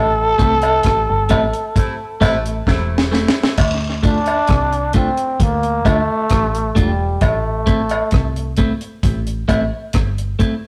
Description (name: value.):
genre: roots reggae.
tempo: 66 BPM.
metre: 4/4.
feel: straight.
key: D minor.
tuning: A4 = 440 Hz.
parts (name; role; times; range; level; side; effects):
growling trombone; melody; 0.0-8.6 s; G3 to A4; -21 LUFS; equal; none.
deep dub fingered electric bass; bass; 0.0-10.3 s; E1 to D2; -24 LUFS; equal; none.
clean electric guitar; accompaniment; 0.4-10.5 s; A3 to F4; -25 LUFS; equal; dub echo.
deep reggae drum kit; drums; 0.4-10.6 s; hi-hat, kick drum, rim click, snare drum; -20 LUFS; equal; none.
cowbell and jawbone-type rattle; percussion; 0.6-9.7 s; none; -24 LUFS; equal; none.
warm horn section; second line; 1.8-3.5 s; C3 to E4; -28 LUFS; equal; none.
room: moderate stone room reverb, RT60 1.0 s.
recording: rough rehearsal-room recording, tube saturation.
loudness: -17 LUFS.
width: mono.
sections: 0.0-3.6 A section; 3.6-10.7 B section.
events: band accent 0.0-3.6; drum fill 2.7-3.6.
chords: 0.0 Am; 3.6 Dm; 7.2 Am.